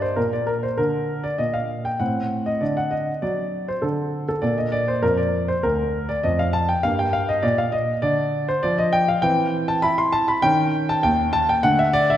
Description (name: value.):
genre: classical-period piano sonatina.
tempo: 99 BPM.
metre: 4/4.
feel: straight.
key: G minor.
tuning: A4 = 440 Hz.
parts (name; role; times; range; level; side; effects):
warm concert grand piano; solo; 0.0-12.2 s; D2 to C6; -19 LUFS; equal; none.
room: wet scoring stage reverb, RT60 1.6 s.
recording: none.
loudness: -19 LUFS.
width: side -11 dB against mid.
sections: 0.0-12.2 A section.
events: none.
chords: 0.0 Gm; 2.0 D7/A; 4.4 Ebmaj7sus2; 6.8 Gm; 9.2 C/E; 10.4 Eb7#11; 11.6 D.